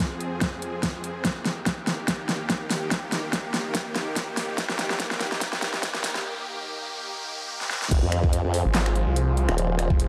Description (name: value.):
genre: heavy wobble dubstep.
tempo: 144 BPM.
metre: 4/4.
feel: swing 55% on 16ths, half-time.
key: unclear.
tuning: A4 = 440 Hz.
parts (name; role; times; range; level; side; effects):
supersaw pad; sustained chords; 0.0-10.1 s; Eb2 to C5; -34 LUFS; equal; sidechain pumping, low-pass filter.
dubstep drum kit; drums; 0.0-10.1 s; crash cymbal, finger snaps, handclaps, hi-hat, snare drum; -30 LUFS; equal; overdrive, studio ambience.
electronic kick drum; drums; 0.0-10.0 s; none; -28 LUFS; equal; overdrive, studio ambience.
riser; sound effects; 1.4-7.9 s; none; -41 LUFS; equal; none.
formant-sweep wobble bass; bass; 7.9-9.9 s; Eb1 to F2; -26 LUFS; equal; chorus, overdrive.
snarling distorted saw bass; bass; 8.7-10.1 s; F1 to C2; -25 LUFS; equal; distortion, overdrive.
room: light reverb.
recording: dark, warm production, high-pass filter.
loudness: -26 LUFS.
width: mono.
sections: 0.0-7.9 A section; 7.9-10.1 B section.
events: build-up 0.0-7.9; drum fill 0.0-6.2, 7.6-7.9; filter sweep 0.0-7.9; break 6.2-7.9; drop 7.9-10.1.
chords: 0.0 Fm; 1.2 Eb; 7.9 Fm.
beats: 0.00 0.41 0.83 | 1.25 1.66 2.08 2.50 | 2.91 3.33 3.75 4.16 | 4.58 5.00 5.41 5.83 | 6.25 6.66 7.08 7.50 | 7.91 8.33 8.75 9.16 | 9.58 10.00.